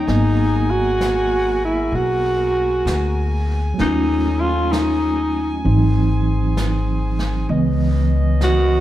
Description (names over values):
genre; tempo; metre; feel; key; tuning
jazz ballad; 65 BPM; 4/4; swing 66% on 8ths; unclear; A4 = 440 Hz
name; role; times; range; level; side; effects
growling tenor saxophone; melody; 0.0-8.8 s; D#4 to F#4; -19 LUFS; equal; none
tine electric piano; accompaniment; 0.0-8.8 s; E3 to D#5; -23 LUFS; right 2 dB; medium tremolo
clear saxophone section; sustained chords; 0.0-8.8 s; C#4 to G#5; -29 LUFS; equal; none
upright bass; bass; 0.0-8.8 s; G#1 to D#2; -20 LUFS; left 1 dB; none
jazz brush drum kit; drums; 0.1-8.8 s; brushed snare drum, hi-hat, snare drum; -31 LUFS; equal; none
room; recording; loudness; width
moderate large studio reverb, RT60 0.9 s; heard from further back in the room; -16 LUFS; side -13 dB against mid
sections
0.0-8.8 A section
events
none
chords
0.1 G#m9; 3.8 D#m7b5; 5.6 G#7b13; 7.5 C#m9